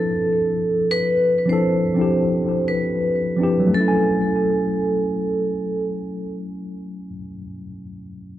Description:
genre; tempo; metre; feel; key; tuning
hip hop; 85 BPM; 4/4; swing 64% on 16ths; F# minor; A4 = 441 Hz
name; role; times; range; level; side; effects
vibraphone with hard mallets; melody; 0.0-5.8 s; A4 to C5; -21 LUFS; right 1 dB; analog delay
mellow tine electric piano; accompaniment; 0.0-8.4 s; F3 to G#5; -22 LUFS; left 1 dB; medium stereo tremolo, analog delay
room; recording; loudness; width
wet spring reverb, RT60 1.3 s, small room ambience; echo-heavy mix, cassette tape; -18 LUFS; side -13 dB against mid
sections
0.0-3.7 A section; 3.7-6.6 B section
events
none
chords
0.0 Dm9; 3.7 F#m9

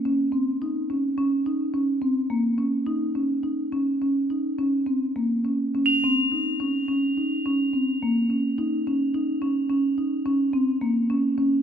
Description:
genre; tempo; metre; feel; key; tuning
contemporary instrumental, chamber music in an uneven meter; 106 BPM; 5/4; straight; unclear; A4 = 440 Hz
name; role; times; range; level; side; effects
marimba with soft mallets; arpeggios; 0.1-11.5 s; Bb3 to Eb4; -22 LUFS; equal; none
crotales; texture; 5.9-7.8 s; F7; -26 LUFS; equal; none
room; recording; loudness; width
moderate scoring stage reverb, RT60 1.8 s; none; -22 LUFS; side -8 dB against mid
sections
0.0-11.6 A section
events
none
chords
0.0 Bbmadd9 (rootless)

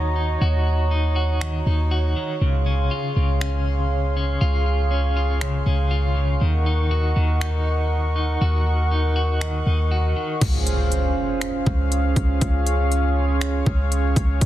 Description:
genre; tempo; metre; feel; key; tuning
hip hop, atmospheric cloud-rap; 120 BPM; 4/4; half-time; Db major; A4 = 440 Hz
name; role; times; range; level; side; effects
warm analog pad; sustained chords; 0.0-14.5 s; Bb3 to Db6; -26 LUFS; right 2 dB; chorus, sidechain pumping
clean electric guitar; arpeggios; 0.0-10.4 s; Db3 to Gb4; -28 LUFS; left 3 dB; tremolo, digital delay
warm 808-style bass; bass; 0.0-14.5 s; Db2 to Eb2; -20 LUFS; equal; none
trap drum kit; drums; 1.4-14.5 s; crash cymbal, finger snaps, hi-hat, kick drum; -24 LUFS; equal; soft clipping on snare
impact; sound effects; 10.4-12.4 s; none; -31 LUFS; equal; none
room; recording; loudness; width
digital ambience; dense, heavily limited modern master; -19 LUFS; side -13 dB against mid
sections
0.0-10.4 A section; 10.4-14.5 B section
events
impact 10.4-12.4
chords
0.0 Ebm7; 2.4 Dbmaj7; 6.4 Ebm7; 10.4 Dbmaj7

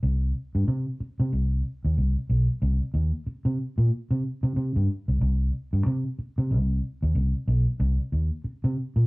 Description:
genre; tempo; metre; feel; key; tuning
funk; 93 BPM; 4/4; swing 60% on 16ths; C minor; A4 = 440 Hz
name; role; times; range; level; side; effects
vintage muted fingered electric bass; solo; 0.0-9.1 s; B1 to C3; -23 LUFS; equal; cassette tape
room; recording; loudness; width
wet small room reverb, RT60 0.5 s; home recording on cassette, nothing above 10.6 kHz; -23 LUFS; side -25 dB against mid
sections
0.0-9.1 A section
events
none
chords
none

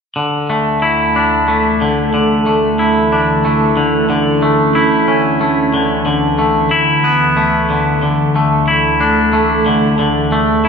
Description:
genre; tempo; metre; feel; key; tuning
rock; 92 BPM; 3/4; straight; unclear; A4 = 439 Hz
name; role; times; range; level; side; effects
warbly tape-like pad; sustained chords; 0.2-10.7 s; D2 to A4; -16 LUFS; right 1 dB; chorus, built-in reverb, phaser
twangy electric guitar; arpeggios; 0.2-10.7 s; D3 to E4; -13 LUFS; left 1 dB; tape echo, slapback echo
room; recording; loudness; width
wet scoring stage reverb, RT60 1.8 s; big arena sound; -11 LUFS; side -6 dB against mid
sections
0.2-10.7 A section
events
none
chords
0.2 Dsus2; 4.1 A/D; 6.1 Esus4/D; 8.0 Dsus2

